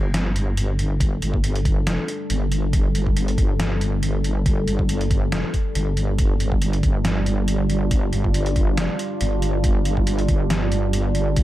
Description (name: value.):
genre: deep dubstep.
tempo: 139 BPM.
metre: 4/4.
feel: swing 54% on 16ths, half-time.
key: unclear.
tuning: A4 = 440 Hz.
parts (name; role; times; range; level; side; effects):
deep dark ambient pad; sustained chords; 0.4-11.4 s; G3 to A4; -27 LUFS; right 1 dB; chorus, built-in reverb.
wobble bass; bass; 0.0-11.4 s; F1 to G1; -22 LUFS; equal; chorus.
trip hop sampler-style drum kit; drums; 0.1-11.4 s; hi-hat, snare drum; -28 LUFS; equal; overdrive.
electronic kick drum; drums; 1.0-11.4 s; none; -21 LUFS; equal; none.
room: digital ambience.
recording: none.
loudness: -19 LUFS.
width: side -15 dB against mid.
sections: 0.0-11.4 A section.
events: none.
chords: 0.0 Gsus2.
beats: 0.14 0.57 | 1.00 1.44 1.87 2.30 | 2.73 3.16 3.60 4.03 | 4.46 4.89 5.32 5.75 | 6.18 6.62 7.05 7.48 | 7.91 8.34 8.78 9.21 | 9.64 10.07 10.50 10.93 | 11.36.